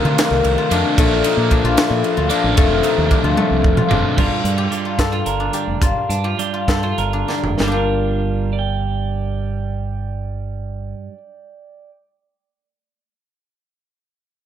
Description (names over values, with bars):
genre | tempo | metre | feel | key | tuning
math rock and midwest emo | 64-75 BPM (dotted quarters) | 6/8 | straight | G minor | A4 = 440 Hz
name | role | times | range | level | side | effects
guzheng | arpeggios | 0.0-11.2 s | G3 to A4 | -20 LUFS | left 6 dB | analog delay
overdriven semi-hollow guitar | riff | 0.0-4.2 s | F2 to F4 | -20 LUFS | right 3 dB | spring reverb
fingered electric bass | bass | 0.0-10.9 s | F1 to D3 | -21 LUFS | right 1 dB | none
crisp fusion drum kit | drums | 0.2-7.7 s | crash cymbal, hi-hat, kick drum, ride cymbal, snare drum, toms | -19 LUFS | right 1 dB | none
twelve-string electric guitar | accompaniment | 4.2-12.0 s | G2 to G5 | -24 LUFS | right 10 dB | spring reverb
room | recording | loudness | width
light reverb | none | -15 LUFS | side -10 dB against mid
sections
0.0-4.2 A section; 4.2-7.6 B section; 7.6-11.4 C section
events
drum fill 3.4-4.2, 7.3-7.6; slowing down 4.2-7.6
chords
0.0 F7sus4/C; 1.0 Bbmaj7; 2.6 F7; 4.2 Gm9; 7.6 Gm7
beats
0.18 | 0.98 1.78 | 2.58 3.38 | 4.17 4.98 | 5.81 6.67 | 7.58 8.53 | 9.47 10.41